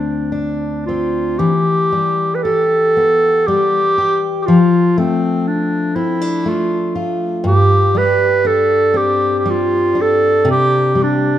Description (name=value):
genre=celtic folk, Celtic slow air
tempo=59 BPM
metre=3/4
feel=rubato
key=unclear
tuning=A4 = 440 Hz
part: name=clear clarinet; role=melody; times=0.0-11.4 s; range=C4 to B4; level=-14 LUFS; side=right 1 dB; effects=none
part: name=fingerpicked steel-string acoustic guitar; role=accompaniment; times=0.0-11.4 s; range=D2 to G4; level=-17 LUFS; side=left 2 dB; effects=none
room=moderate recital hall reverb, RT60 1.8 s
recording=minimal, uncompressed stereo recording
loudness=-13 LUFS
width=side -11 dB against mid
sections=0.0-1.4 A section; 1.4-11.4 B section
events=none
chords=0.0 Dm7; 1.4 Em; 4.5 Dm/F; 7.4 Gsus4; 10.5 Csus2